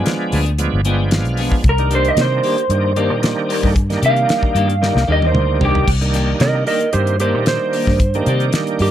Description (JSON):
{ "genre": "straight-eighth soul blues", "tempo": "113 BPM", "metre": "4/4", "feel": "straight", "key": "C minor", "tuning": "A4 = 440 Hz", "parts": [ { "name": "electric guitar through a small old amp", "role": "melody", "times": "0.0-5.9 s", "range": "G4 to Ab5", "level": "-18 LUFS", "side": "right 1 dB", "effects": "lush chorus" }, { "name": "bright tonewheel organ", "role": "accompaniment", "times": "0.0-8.9 s", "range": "Eb3 to G5", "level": "-22 LUFS", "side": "right 3 dB", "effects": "slow rotary speaker, overdrive, chorus vibrato, plate reverb" }, { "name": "damped 70s drum kit", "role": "drums", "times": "0.1-8.9 s", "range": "crash cymbal, hi-hat, kick drum, snare drum, toms", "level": "-20 LUFS", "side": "left 1 dB", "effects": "none" }, { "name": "clean electric guitar", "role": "stabs", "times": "0.3-8.9 s", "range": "Eb3 to Ab4", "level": "-25 LUFS", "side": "left 6 dB", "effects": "lush chorus" }, { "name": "vintage muted fingered electric bass", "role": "bass", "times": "0.3-8.9 s", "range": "G1 to C3", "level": "-18 LUFS", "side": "equal", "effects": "none" }, { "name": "electric slide guitar", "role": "second line", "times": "6.4-8.9 s", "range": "G4 to Eb5", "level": "-19 LUFS", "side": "right 4 dB", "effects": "plate reverb" } ], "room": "light reverb", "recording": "none", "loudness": "-14 LUFS", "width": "side -11 dB against mid", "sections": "0.0-5.9 A section; 5.9-8.9 A section", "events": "clean electric guitar solo 0.0-5.9; tonewheel organ fill 0.6-1.6; drum fill 4.8-5.9; electric slide guitar solo 5.9-8.9", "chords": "0.0 G7b9; 1.6 Cm9" }